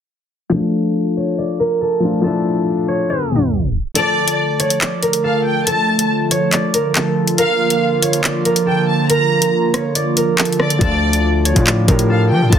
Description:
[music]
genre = hip hop, drill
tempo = 140 BPM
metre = 4/4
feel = half-time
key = D harmonic minor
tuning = A4 = 439 Hz
[part]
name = concert harp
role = melody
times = 0.5-12.6 s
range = A4 to D5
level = -19 LUFS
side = right 1 dB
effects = low-pass filter
[part]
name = dark concert grand piano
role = accompaniment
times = 0.5-4.0, 10.8-12.6 s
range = F3 to G4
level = -18 LUFS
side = left 2 dB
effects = low-pass filter
[part]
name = warm studio violin section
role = second line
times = 4.0-12.6 s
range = D5 to Bb5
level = -20 LUFS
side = equal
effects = digital delay
[part]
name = hollow soft pad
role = sustained chords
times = 4.0-12.6 s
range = D3 to F4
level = -20 LUFS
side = right 2 dB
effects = chorus
[part]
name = drill drum kit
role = drums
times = 4.0-12.6 s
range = handclaps, hi-hat, kick drum, rim click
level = -17 LUFS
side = equal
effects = overdrive
[part]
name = distorted 808-style bass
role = bass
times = 10.8-12.6 s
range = D2 to F3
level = -16 LUFS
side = equal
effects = distortion
[sound]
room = light reverb, small room reverb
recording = dense, heavily limited modern master, tape stop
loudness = -14 LUFS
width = side -8 dB against mid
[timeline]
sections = 0.5-4.0 A section; 4.0-12.6 B section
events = filter sweep 0.5-4.0; tape stop 3.1-4.0; kick muted 4.0-10.8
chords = 0.5 Dm; 7.4 Bb; 10.8 Dm

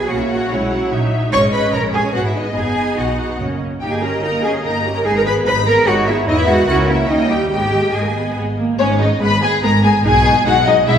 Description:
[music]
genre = quick classical-period movement for string orchestra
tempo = 145 BPM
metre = 3/4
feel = straight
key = G# minor from 3.8 s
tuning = A4 = 440 Hz
[part]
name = warm symphonic violin section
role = melody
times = 0.0-11.0 s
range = A#4 to B5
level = -20 LUFS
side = left 4 dB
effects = none
[part]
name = rich symphonic violin section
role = second line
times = 0.0-11.0 s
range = C#4 to C#6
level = -22 LUFS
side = left 2 dB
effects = none
[part]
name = rich symphonic viola section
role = accompaniment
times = 0.0-11.0 s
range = D#3 to G#4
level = -21 LUFS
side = right 2 dB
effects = none
[part]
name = rich symphonic cello section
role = bass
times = 0.0-11.0 s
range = G#2 to C#5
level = -19 LUFS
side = right 2 dB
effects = none
[part]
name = rich symphonic double bass section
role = bass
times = 0.0-11.0 s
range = F#1 to E2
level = -21 LUFS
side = right 1 dB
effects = none
[sound]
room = wet recital hall reverb, RT60 1.8 s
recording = heard from further back in the room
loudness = -14 LUFS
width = side -8 dB against mid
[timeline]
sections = 0.0-8.8 A section; 8.8-11.0 B section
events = none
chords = 0.1 F#/A#; 1.3 G#m; 2.6 B/F#; 3.4 F#; 3.8 D#7/G; 5.1 G#m; 6.3 Emaj7; 6.7 A#dim/C#; 7.1 D#7; 7.5 G#m; 10.0 G#m/B

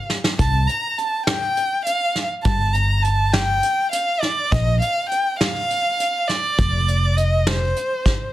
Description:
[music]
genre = progressive instrumental, band music in an uneven meter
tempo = 204 BPM (eighths)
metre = 7/8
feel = straight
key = C dorian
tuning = A4 = 441 Hz
[part]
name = rich violin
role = melody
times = 0.0-8.3 s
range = C5 to Bb5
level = -20 LUFS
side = equal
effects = none
[part]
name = vintage brush drum kit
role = drums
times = 0.1-8.2 s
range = hi-hat, kick drum, snare drum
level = -22 LUFS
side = equal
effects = soft clipping on snare
[part]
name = woody fretless electric bass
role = bass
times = 0.4-7.7 s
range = F1 to C2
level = -19 LUFS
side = equal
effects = ensemble chorus
[sound]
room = light reverb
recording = dense, heavily limited modern master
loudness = -18 LUFS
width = side -14 dB against mid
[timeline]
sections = 0.0-8.3 A section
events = drum fill 0.1, 8.1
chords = 0.4 C5; 2.5 Gsus2; 4.5 Bb5; 6.6 F5

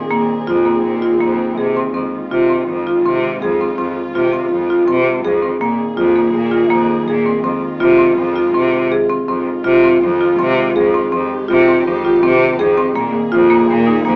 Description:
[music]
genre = contemporary instrumental, chamber music in an uneven meter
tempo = 164 BPM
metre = 5/4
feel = straight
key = F minor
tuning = A4 = 439 Hz
[part]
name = warm studio string section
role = sustained chords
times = 0.0-14.2 s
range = Eb3 to Ab4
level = -22 LUFS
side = equal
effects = none
[part]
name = marimba with medium hard mallets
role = arpeggios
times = 0.0-14.2 s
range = Bb3 to Ab4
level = -14 LUFS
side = equal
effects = none
[part]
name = clear cello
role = bass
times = 0.0-14.2 s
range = F2 to C3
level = -19 LUFS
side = equal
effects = none
[sound]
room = moderate studio reverb, RT60 0.7 s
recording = small speaker sound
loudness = -12 LUFS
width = side -34 dB against mid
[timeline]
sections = 0.0-9.3 A section; 9.3-14.2 B section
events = none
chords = 0.0 Bb7sus4; 1.9 Fm7; 5.6 Bb7sus4; 7.4 Fm7; 13.0 Bb7sus4

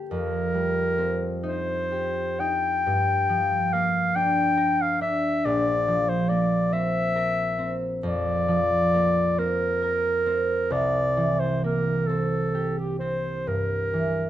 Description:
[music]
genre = classical, impressionist duo for clarinet and harp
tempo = 40-47 BPM (dotted quarters)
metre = 12/8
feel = rubato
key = unclear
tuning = A4 = 440 Hz
[part]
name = concert harp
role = accompaniment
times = 0.0-14.3 s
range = Bb1 to Bb4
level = -26 LUFS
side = right 1 dB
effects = none
[part]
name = warm clarinet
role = melody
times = 0.1-14.3 s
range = G4 to G5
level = -24 LUFS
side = left 1 dB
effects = none
[sound]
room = light reverb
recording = none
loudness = -22 LUFS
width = side -12 dB against mid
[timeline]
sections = 0.0-14.3 A section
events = none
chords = 0.1 F9sus4; 2.9 Gm7; 5.4 Bbadd9; 10.7 C7

